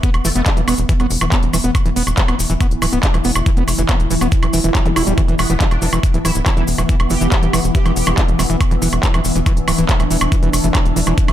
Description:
psychedelic trance; 140 BPM; 4/4; straight; A4 = 439 Hz
swarming drone; sustained chords; 0.0-11.3 s; E3 to E4; -22 LUFS; left 1 dB; built-in reverb, vintage 12-bit sampler grit, sidechain pumping
screaming distorted acid line; riff; 0.0-11.3 s; E3 to E4; -22 LUFS; right 1 dB; distortion, chorus, auto-pan, sidechain pumping, dub echo
electronic kick drum; drums; 0.0-11.3 s; -15 LUFS; equal; overdrive, studio ambience
techno drum kit; drums; 0.0-11.3 s; handclaps, hi-hat, woodblock; -21 LUFS; right 1 dB; overdrive, studio ambience
maracas; percussion; 0.0-11.3 s; -28 LUFS; left 3 dB
granular cloud pad; texture; 0.0-11.3 s; B3 to E6; -32 LUFS; equal
tight sequencer bass; bass; 0.1-11.3 s; D1 to F1; -19 LUFS; equal
metallic wobble bass; second line; 0.2-0.4, 5.4-8.2 s; A3 to G4; -30 LUFS; right 1 dB; distortion, analog chorus, sidechain pumping, high-pass filter, dub echo
zap; sound effects; 4.9-5.0 s; -27 LUFS; equal
digital ambience; -13 LUFS; side -12 dB against mid
0.0-11.3 A section
0.0 E5

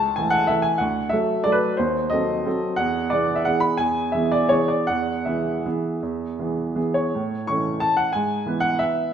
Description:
classical, piano waltz; 153-195 BPM; 3/4; rubato; A4 = 440 Hz
clear upright piano; solo; 0.0-9.1 s; C#2 to C#6; -20 LUFS; right 1 dB
moderate recital hall reverb, RT60 1.4 s; -20 LUFS; side -8 dB against mid
0.0-7.1 A section; 7.1-9.1 B section
0.0 A/C#; 0.8 D; 1.8 D#dim7; 2.8 E; 7.1 A; 8.1 E/G#

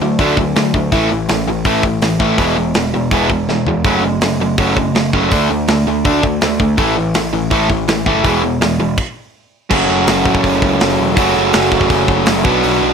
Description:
punk rock; 164 BPM; 4/4; straight; F# minor; A4 = 439 Hz
crunchy overdriven guitar; riff; 0.0-12.9 s; F#2 to F#4; -16 LUFS; right 12 dB
distorted electric guitar; riff; 0.0-12.9 s; E2 to D4; -17 LUFS; left 12 dB; overdrive
fuzz picked electric bass; bass; 0.0-12.9 s; E1 to D2; -22 LUFS; equal; overdrive
tight metal drum kit; drums; 0.2-12.7 s; crash cymbal, hi-hat, kick drum, snare drum, toms; -18 LUFS; equal
light reverb; -12 LUFS; side -6 dB against mid
0.0-9.7 A section; 9.7-12.9 B section
drum fill 3.5-3.9; stop 9.0-9.7
0.0 D; 0.9 A5; 2.4 E; 3.9 F#m; 5.3 D5; 6.8 A5; 8.2 E; 9.7 F#m

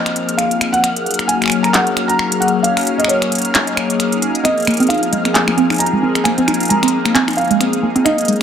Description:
IDM; 133 BPM; 4/4; swing 56% on 16ths; Bb minor; A4 = 440 Hz
felt-muted upright piano; melody; 0.0-8.4 s; Db5 to Bb5; -19 LUFS; right 1 dB; tape echo
phased analog pad; sustained chords; 0.0-8.4 s; F3 to Ab4; -19 LUFS; left 3 dB; phaser, chorus, vintage 12-bit sampler grit
flickering grainy texture; texture; 0.0-8.4 s; F6; -27 LUFS; equal; built-in reverb
industrial drum kit; drums; 0.1-8.4 s; finger snaps, handclaps, hi-hat; -18 LUFS; equal; studio ambience
warbly dusty pluck; arpeggios; 4.4-8.4 s; Ab3 to Eb4; -16 LUFS; right 2 dB; chorus, analog delay
wet plate reverb, RT60 2.4 s; echo-heavy mix; -13 LUFS; side -8 dB against mid
0.0-8.4 A section
0.0 Bb9sus4; 0.8 Ab9sus4; 4.4 Bb9sus4

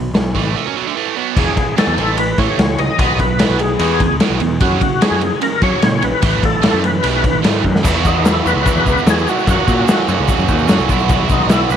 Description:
classic rock; 148 BPM; 4/4; straight; B mixolydian; A4 = 440 Hz
biting overdriven guitar; riff; 0.0-11.8 s; E2 to F#4; -19 LUFS; right 13 dB
growling picked electric bass; bass; 0.0-11.8 s; E1 to F#3; -19 LUFS; left 1 dB; overdrive
raw garage drum kit; drums; 0.1-11.8 s; crash cymbal, hi-hat, kick drum, ride cymbal, snare drum; -16 LUFS; left 1 dB
overdriven tonewheel organ; melody; 1.4-11.8 s; D#4 to D#5; -19 LUFS; left 3 dB; slow rotary speaker, chorus vibrato, tape echo
egg shaker; percussion; 7.8-11.8 s; -36 LUFS; left 18 dB
light reverb, small room ambience; 1960s-style stereo with parts hard left and right; -12 LUFS; side -9 dB against mid
0.0-1.4 A section; 1.4-7.9 B section; 7.9-11.8 C section
break 0.6-1.4; drum fill 7.7
0.0 B5; 1.4 E; 2.0 A; 3.0 B5; 3.8 E; 4.6 F#; 6.2 A5; 7.0 B7; 7.9 Esus2; 9.5 F#; 10.9 Bsus4

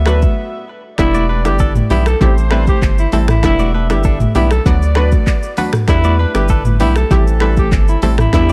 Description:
afrobeats; 98 BPM; 4/4; straight; E minor; A4 = 440 Hz
clear horn section; second line; 0.0-8.5 s; E3 to E5; -28 LUFS; equal; digital delay
analog pluck; accompaniment; 0.0-8.5 s; F#3 to F#4; -23 LUFS; equal; chorus
saturated sub bass; bass; 0.0-8.5 s; E1 to E2; -17 LUFS; equal
growling alto saxophone; melody; 0.1-8.5 s; E4 to B4; -23 LUFS; equal
direct-recorded clean electric guitar; riff; 0.1-8.5 s; B3 to D5; -27 LUFS; equal; digital delay
afro-pop drum kit; drums; 0.1-8.5 s; finger snaps, handclaps, hi-hat, kick drum, rim click, shaker, toms; -18 LUFS; equal
congas; percussion; 0.2-8.5 s; -28 LUFS; equal
digital ambience; -14 LUFS; mono
0.0-8.5 A section
break 0.4-1.0
0.0 Bm/D; 1.0 Em7; 2.2 Am7; 3.4 Em7; 4.7 Bm/D; 5.9 Em7; 7.1 Am7

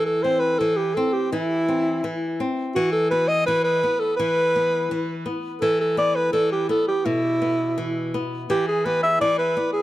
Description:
andean folk; 84 BPM; 2/4; straight; E minor; A4 = 440 Hz
mellow alto saxophone; melody; 0.0-9.8 s; E4 to E5; -21 LUFS; equal; tape echo
flamenco guitar; accompaniment; 0.0-9.8 s; B2 to C4; -26 LUFS; left 2 dB
light reverb; close, detailed microphones; -20 LUFS; side -15 dB against mid
0.0-9.8 A section
0.0 Am/E; 2.8 E5

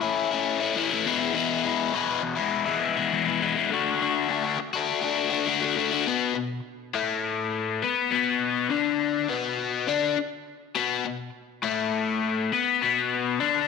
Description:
rock; 102 BPM; 4/4; straight; B dorian; A4 = 439 Hz
overdriven electric guitar; solo; 0.0-13.7 s; E2 to B4; -23 LUFS; left 7 dB; phaser, slapback echo
moderate echo chamber reverb, RT60 1.8 s, digital ambience; -23 LUFS; side -5 dB against mid
0.0-6.1 A section; 6.1-13.7 B section
0.0 A; 1.1 E; 3.7 D; 6.1 Bm

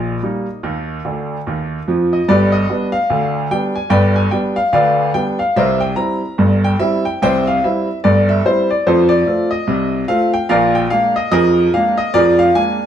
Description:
ragtime piano; 73 BPM; 2/4; swing 58% on 16ths; A4 = 440 Hz
clear baby grand piano; solo; 0.0-12.9 s; G1 to Bb5; -13 LUFS; equal
wet stone room reverb, RT60 1.0 s; band playing live in one room; -13 LUFS; side -9 dB against mid
0.0-2.3 A section; 2.3-12.9 B section
grand piano fill 1.1-2.3
0.0 Eb5; 2.3 G; 5.6 C7; 8.9 F; 10.5 Bb7

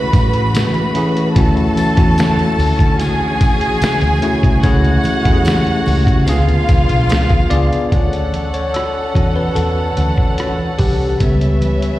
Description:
lush 1970s-style soul; 73 BPM; 4/4; straight; A4 = 440 Hz
warm studio violin section; second line; 0.0-12.0 s; C#4 to B5; -20 LUFS; equal; slapback echo
bell-like tine electric piano; accompaniment; 0.0-12.0 s; C#3 to D5; -19 LUFS; left 1 dB; medium stereo tremolo, slapback echo
warm studio string section; sustained chords; 0.0-7.9 s; D3 to F#4; -24 LUFS; left 1 dB
vintage muted fingered electric bass; bass; 0.1-11.9 s; B1 to D3; -16 LUFS; equal
trip hop sampler-style drum kit; drums; 0.1-12.0 s; hi-hat, kick drum, rim click, snare drum; -17 LUFS; equal
congas; percussion; 0.1-11.8 s; -27 LUFS; right 3 dB
tambourine; percussion; 0.1-7.7 s; -39 LUFS; left 1 dB
glockenspiel with soft plastic mallets; texture; 1.8-11.4 s; E6 to A6; -31 LUFS; right 1 dB
small room ambience; live gig heard through the venue's PA, recital hall reverb; -12 LUFS; side -15 dB against mid
0.0-7.9 A section; 7.9-12.0 B section
tine electric piano solo 7.9-12.0
0.0 F#m7; 1.4 Dmaj9; 4.6 F#m7/C#; 6.3 C#7b9; 7.9 Dmaj9; 11.2 A9/C#

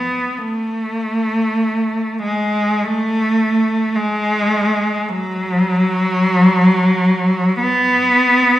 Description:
classical, free, expressive piece for unaccompanied cello; free time; A4 = 444 Hz
rich cello; solo; 0.0-8.6 s; F#3 to B3; -14 LUFS; equal
wet recital hall reverb, RT60 1.4 s; heard from further back in the room; -14 LUFS; side -14 dB against mid
0.0-8.6 A section

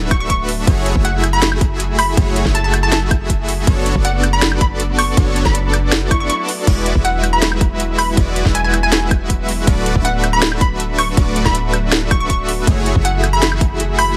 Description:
future bass; 160 BPM; 4/4; half-time; F# minor; A4 = 440 Hz
airy breathy pad; sustained chords; 0.0-14.2 s; D3 to G#4; -32 LUFS; equal
supersaw chords; riff; 0.0-14.2 s; G#3 to E5; -23 LUFS; equal; sidechain pumping
warm 808-style bass; bass; 0.0-14.2 s; D1 to F#1; -21 LUFS; equal; sidechain pumping
hollow square pluck; melody; 0.1-14.1 s; F#5 to C#6; -22 LUFS; equal; ensemble chorus, sidechain pumping, tape echo
electronic kick drum; drums; 0.1-13.7 s; -18 LUFS; equal
trap drum kit; drums; 0.1-14.1 s; crash cymbal, hi-hat, snare drum, woodblock; -22 LUFS; equal
swell; sound effects; 6.0-6.7 s; -33 LUFS; equal
light reverb, digital ambience; -16 LUFS; mono
0.0-14.2 A section
swell 6.0-6.7; break 6.3-6.7
0.0 D6; 0.7 F#m9; 3.7 Bm9/F#; 6.7 E9; 9.7 D6; 12.7 F#m9

